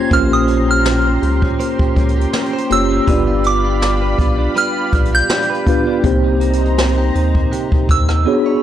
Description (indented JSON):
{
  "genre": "contemporary R&B",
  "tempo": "81 BPM",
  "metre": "4/4",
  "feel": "swing 54% on 16ths",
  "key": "unclear",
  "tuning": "A4 = 441 Hz",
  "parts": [
    { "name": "soft synth bell", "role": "melody", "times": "0.0-8.6 s", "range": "D6 to G6", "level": "-19 LUFS", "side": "right 1 dB", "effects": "chorus, phaser, tape echo" },
    { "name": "mellow tine electric piano", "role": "accompaniment", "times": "0.0-8.6 s", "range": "Bb3 to D5", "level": "-18 LUFS", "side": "equal", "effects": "medium stereo tremolo" },
    { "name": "lush unison pad", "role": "sustained chords", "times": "0.0-8.6 s", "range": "D4 to C6", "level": "-26 LUFS", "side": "left 1 dB", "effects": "chorus, sidechain pumping" },
    { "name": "direct-recorded clean electric guitar", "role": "arpeggios", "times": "0.0-8.6 s", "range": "C3 to C#5", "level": "-25 LUFS", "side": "right 3 dB", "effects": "lush chorus, tape echo" },
    { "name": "rubbery square bass", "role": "bass", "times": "0.1-8.3 s", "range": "Gb1 to Eb2", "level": "-17 LUFS", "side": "equal", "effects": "none" },
    { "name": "jazz brush drum kit", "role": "drums", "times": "0.1-8.2 s", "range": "hi-hat, kick drum, rim click, snare drum", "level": "-18 LUFS", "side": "equal", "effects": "vintage 12-bit sampler grit" }
  ],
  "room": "little or no reverb",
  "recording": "dry, gritty hardware recording",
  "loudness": "-13 LUFS",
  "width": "side -11 dB against mid",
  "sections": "0.0-8.6 A section",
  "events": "drums muted 8.3-8.6",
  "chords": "0.0 Bbm69; 3.1 G7; 6.0 Cm7",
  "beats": "| 0.11 0.85 1.59 2.33 | 3.07 3.81 4.56 5.30 | 6.04 6.78 7.52 8.26"
}